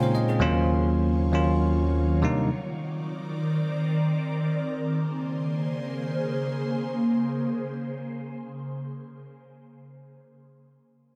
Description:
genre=amapiano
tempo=free time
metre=none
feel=none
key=unclear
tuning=A4 = 440 Hz
part: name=bell-like tine electric piano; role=accompaniment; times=0.0-2.5 s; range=Eb2 to Bb5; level=-24 LUFS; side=equal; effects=none
part: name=ethereal airy pad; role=sustained chords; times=0.0-9.2 s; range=Db3 to D5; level=-30 LUFS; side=equal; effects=ensemble chorus, built-in reverb, phaser
room=moderate lush hall reverb, RT60 2.1 s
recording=dense, heavily limited modern master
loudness=-26 LUFS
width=mono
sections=0.0-4.6 A section; 4.6-8.7 B section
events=tine electric piano fill 0.0-0.4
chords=0.4 Ebm9; 2.2 Cm9; 4.6 Bbm9

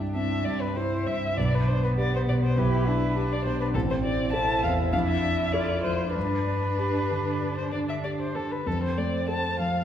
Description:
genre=quick classical-period movement for piano quartet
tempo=99 BPM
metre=4/4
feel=uneven beats, rubato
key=unclear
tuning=A4 = 441 Hz
part: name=muted violin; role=second line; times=0.0-9.8 s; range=B3 to E4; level=-33 LUFS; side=equal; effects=none
part: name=dark concert grand piano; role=accompaniment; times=0.0-9.8 s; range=A1 to A4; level=-26 LUFS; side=equal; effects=none
part: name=muted violin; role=melody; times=0.2-9.8 s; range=A4 to A5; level=-29 LUFS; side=left 2 dB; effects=none
part: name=muted cello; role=second line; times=0.2-8.3 s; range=B3 to G4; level=-34 LUFS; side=right 3 dB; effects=none
room=wet recital hall reverb, RT60 1.4 s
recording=heard from further back in the room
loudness=-24 LUFS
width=side -10 dB against mid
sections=0.0-9.8 A section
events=none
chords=0.0 C; 1.4 G/B; 3.7 Am; 4.9 Dm/F; 6.2 G; 8.7 F6

